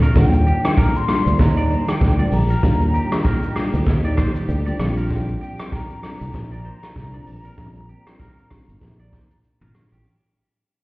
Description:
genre	afrobeats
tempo	97 BPM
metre	4/4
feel	swing 58% on 16ths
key	Bb major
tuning	A4 = 439 Hz
part	clean electric guitar	riff	0.0-10.0 s	G4 to D5	-34 LUFS	right 2 dB	digital delay
part	fingered electric bass	bass	0.0-10.0 s	G1 to Eb2	-19 LUFS	equal	none
part	vintage brush drum kit	drums	0.0-10.0 s	hi-hat, kick drum, rim click, shaker, toms	-20 LUFS	equal	none
part	mellow hollow silver concert flute	melody	0.2-9.4 s	G5 to C6	-28 LUFS	left 2 dB	digital delay
part	mellow tine electric piano	accompaniment	0.2-9.8 s	G3 to F4	-26 LUFS	left 1 dB	none
part	warm studio string section	sustained chords	0.2-10.0 s	F3 to G4	-30 LUFS	equal	none
room	light reverb, small room reverb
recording	heard muffled through a wall, stone room reverb, EQ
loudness	-16 LUFS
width	side -21 dB against mid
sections	0.0-10.1 A section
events	fade-out 0.0-10.1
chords	0.2 Ebmaj7; 4.8 Bb6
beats	| 0.16 0.77 1.39 2.01 | 2.63 3.25 3.87 4.49 | 5.10 5.72 6.34 6.96 | 7.58 8.20 8.82 9.43

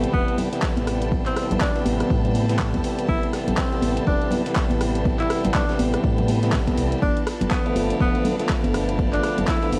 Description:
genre	deep house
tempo	122 BPM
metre	4/4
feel	swing 59% on 16ths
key	A minor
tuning	A4 = 439 Hz
part	warm analog pad	sustained chords	0.0-9.8 s	D4 to B4	-36 LUFS	equal	none
part	tonewheel organ	stabs	0.0-9.8 s	C3 to B3	-28 LUFS	equal	overdrive, vintage 12-bit sampler grit, sidechain pumping, low-pass filter, analog delay
part	sub bass with octave	bass	0.0-9.8 s	D1 to A2	-29 LUFS	equal	tube saturation, sidechain pumping
part	deep house drum kit	drums	0.0-9.8 s	handclaps, hi-hat, rim click	-33 LUFS	equal	vintage 12-bit sampler grit
part	soft brush drum kit	drums	0.0-9.8 s	ride cymbal, snare drum	-44 LUFS	equal	sidechain pumping on cymbals, high-pass filter on cymbals, vintage 12-bit sampler grit, high-pass filter on snare, high-pass filter on room
part	airy breathy pad	texture	0.0-9.8 s	A4 to B5	-40 LUFS	equal	none
part	string machine, violins	texture	0.0-9.8 s	A5	-43 LUFS	equal	ensemble chorus
part	breathy tenor saxophone	melody	0.1-9.7 s	B3 to E4	-30 LUFS	equal	analog delay
part	electronic kick drum	drums	0.1-9.6 s	none	-26 LUFS	equal	vintage 12-bit sampler grit
part	congas	percussion	0.4-9.8 s	none	-31 LUFS	equal	sidechain pumping on perc
room	light reverb, small room reverb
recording	vinyl crackle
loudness	-22 LUFS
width	mono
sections	0.0-9.8 A section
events	none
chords	0.0 Am9; 7.0 G9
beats	0.14 0.63 | 1.12 1.61 2.10 2.60 | 3.09 3.58 4.07 4.56 | 5.05 5.55 6.04 6.53 | 7.02 7.51 8.01 8.50 | 8.99 9.48

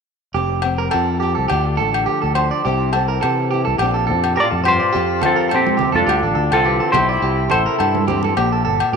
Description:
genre	highlife guitar band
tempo	105 BPM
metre	4/4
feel	swing 54% on 16ths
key	F major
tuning	A4 = 440 Hz
part	nylon-string guitar	accompaniment	0.3-9.0 s	F2 to G4	-25 LUFS	left 10 dB	none
part	clean electric guitar	arpeggios	0.3-9.0 s	G4 to D5	-20 LUFS	right 7 dB	spring reverb, tape echo
part	fingered electric bass	bass	0.3-9.0 s	F1 to C3	-22 LUFS	equal	none
part	agogo bells	percussion	0.6-8.9 s	none	-24 LUFS	left 8 dB	none
part	semi-hollow electric guitar	melody	4.4-8.3 s	C4 to D5	-18 LUFS	equal	none
part	warm trumpet	second line	4.4-8.3 s	C4 to F4	-25 LUFS	left 9 dB	none
part	congas	percussion	5.2-8.4 s	none	-26 LUFS	right 11 dB	none
room	wet echo chamber reverb, RT60 2.4 s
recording	1960s-style stereo with parts hard left and right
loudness	-15 LUFS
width	side -6 dB against mid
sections	0.4-4.9 A section; 4.9-9.0 B section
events	none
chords	0.4 Fsus2; 1.5 Dm; 2.6 C; 3.8 Bbadd9; 4.9 Fsus2; 6.1 Dm; 7.2 C; 8.4 N.C.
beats	| 0.35 0.92 1.50 2.07 | 2.64 3.22 3.79 4.36 | 4.93 5.51 6.08 6.65 | 7.22 7.80 8.37 8.94

